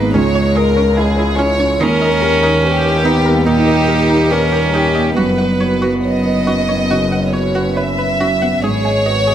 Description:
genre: neoclassical piano and strings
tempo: 71 BPM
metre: 4/4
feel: rubato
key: unclear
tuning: A4 = 444 Hz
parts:
  - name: warm chamber violin section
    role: melody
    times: 0.0-9.3 s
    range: G4 to E5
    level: -17 LUFS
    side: left 1 dB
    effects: none
  - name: warm cello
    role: second line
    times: 0.0-9.3 s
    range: G#3 to G#4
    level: -18 LUFS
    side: right 2 dB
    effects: none
  - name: felt-muted upright piano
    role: accompaniment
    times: 0.0-9.3 s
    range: C#2 to D#5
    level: -19 LUFS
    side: right 3 dB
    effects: none
  - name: deep dark ambient pad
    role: sustained chords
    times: 0.0-9.3 s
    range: F#3 to D#5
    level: -27 LUFS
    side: left 2 dB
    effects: none
  - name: string-like resonator pluck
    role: arpeggios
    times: 0.0-9.3 s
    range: C#4 to G#5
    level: -24 LUFS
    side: right 1 dB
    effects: chorus, slapback echo
  - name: rich double bass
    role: bass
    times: 0.0-9.3 s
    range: F#1 to D#2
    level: -19 LUFS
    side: left 2 dB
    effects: none
room: moderate large studio reverb, RT60 1.5 s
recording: none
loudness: -12 LUFS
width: side -10 dB against mid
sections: 0.0-8.6 A section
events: none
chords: 0.1 C#m; 1.8 D#; 5.2 F#sus4; 8.6 G#m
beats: 0.13 0.96 | 1.80 2.63 3.47 4.31 | 5.17 6.04 6.90 7.77 | 8.63

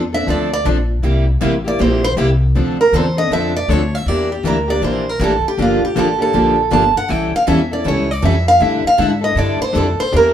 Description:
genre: acoustic string swing (jazz manouche)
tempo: 158 BPM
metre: 4/4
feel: swing 63% on 8ths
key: D minor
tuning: A4 = 440 Hz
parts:
  - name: upright bass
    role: bass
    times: 0.0-10.3 s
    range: G1 to A2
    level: -19 LUFS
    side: left 1 dB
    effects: none
  - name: picked steel-string acoustic guitar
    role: melody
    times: 0.1-10.3 s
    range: F4 to A5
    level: -16 LUFS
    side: right 2 dB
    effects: none
  - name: picked plugged-in steel-string acoustic guitar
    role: accompaniment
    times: 0.1-10.3 s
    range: C3 to A4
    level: -20 LUFS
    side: left 3 dB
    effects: none
  - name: picked steel-string acoustic guitar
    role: accompaniment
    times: 0.3-10.3 s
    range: C3 to Bb4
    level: -23 LUFS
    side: right 4 dB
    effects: none
room: moderate studio reverb, RT60 0.7 s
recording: band playing live in one room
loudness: -13 LUFS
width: side -10 dB against mid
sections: 0.0-2.5 A section; 2.5-10.3 A section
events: steel-string acoustic guitar solo 0.0-2.5, 2.5-10.3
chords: 0.0 F6; 1.0 C6; 2.5 Dm9; 4.1 Em7b5; 5.6 Gm9; 7.1 A7b13; 8.6 A7sus4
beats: 0.28 0.65 | 1.03 1.41 1.79 2.17 | 2.55 2.93 3.31 3.69 | 4.06 4.44 4.82 5.20 | 5.58 5.96 6.34 6.72 | 7.10 7.47 7.86 8.23 | 8.61 8.99 9.37 9.75 | 10.13

